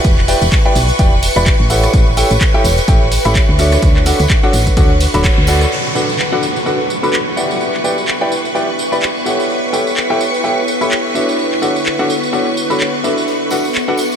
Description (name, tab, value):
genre	piano house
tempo	127 BPM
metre	4/4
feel	swing 57% on 16ths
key	B minor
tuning	A4 = 442 Hz
part	string machine, violins	sustained chords	0.0-14.2 s	B4 to C#6	-20 LUFS	equal	ensemble chorus, sidechain pumping
part	clear grand piano	riff	0.0-14.0 s	D4 to B5	-16 LUFS	equal	sidechain pumping, diffuse ambient delay
part	solid FM bass	bass	0.0-5.7 s	D1 to D2	-15 LUFS	equal	sidechain pumping
part	electronic kick drum	drums	0.0-5.3 s	none	-13 LUFS	equal	none
part	punchy analog drum machine	drums	0.0-14.2 s	handclaps, hi-hat, rim click, tambourine	-21 LUFS	right 1 dB	none
part	tambourine	percussion	0.0-5.7, 13.3-14.2 s	none	-30 LUFS	left 2 dB	none
part	downlifter	sound effects	5.7-9.5 s	none	-26 LUFS	right 1 dB	none
part	warbly tape-like pad	texture	6.8-14.2 s	D3 to C#5	-23 LUFS	equal	chorus, built-in reverb, sidechain pumping
room	moderate huge ambient reverb, RT60 7.9 s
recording	dreamy mix soaked in reverb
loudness	-11 LUFS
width	side -8 dB against mid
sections	0.0-5.7 A section; 5.7-14.2 B section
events	band accent 5.2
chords	0.0 Em7; 3.6 Dmaj7; 5.7 Bm7; 9.3 A7; 11.1 Dmaj7